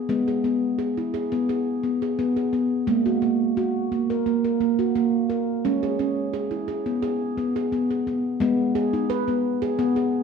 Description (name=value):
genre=world meditative, meditative tuned percussion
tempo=87 BPM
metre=4/4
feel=straight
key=G# minor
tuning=A4 = 440 Hz
part: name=handpan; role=solo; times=0.0-10.2 s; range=G#3 to B4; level=-21 LUFS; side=equal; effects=none
room=wet concert hall reverb, RT60 1.9 s, small room ambience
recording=dark, warm production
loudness=-21 LUFS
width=side -6 dB against mid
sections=0.0-8.4 A section; 8.4-10.2 B section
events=none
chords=0.1 E/G# (rootless); 2.9 F#/G#; 5.6 C#5/G#; 8.4 G#m